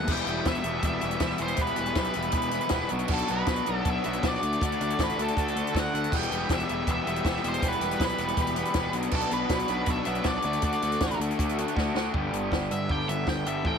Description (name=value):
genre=indie rock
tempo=159 BPM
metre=4/4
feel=straight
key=E minor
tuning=A4 = 441 Hz
part: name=octave-fuzz lead guitar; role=melody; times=0.0-13.8 s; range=A4 to G5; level=-31 LUFS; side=right 1 dB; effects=distortion
part: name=crunchy overdriven guitar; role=riff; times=0.0-13.8 s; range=E2 to A4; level=-31 LUFS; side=left 10 dB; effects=none
part: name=crunchy overdriven guitar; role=riff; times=0.0-13.8 s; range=E2 to A4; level=-33 LUFS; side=right 9 dB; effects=lush chorus, digital delay
part: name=fuzz picked electric bass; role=bass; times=0.0-13.8 s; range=E1 to D2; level=-33 LUFS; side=right 1 dB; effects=overdrive
part: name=string machine, violas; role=sustained chords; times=0.1-12.1 s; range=A4 to E6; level=-40 LUFS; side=right 1 dB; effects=none
part: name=compact cocktail drum kit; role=drums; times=0.1-13.7 s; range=crash cymbal, hi-hat, kick drum, snare drum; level=-30 LUFS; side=equal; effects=none
room=light reverb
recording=none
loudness=-25 LUFS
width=side -6 dB against mid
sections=0.1-12.1 A section; 12.1-13.8 B section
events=drum fill 11.8-12.1; lead electric guitar solo 12.1-13.8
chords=0.1 Em; 2.9 Bm; 4.4 D; 6.1 Em; 8.9 Bm; 10.5 D; 12.1 G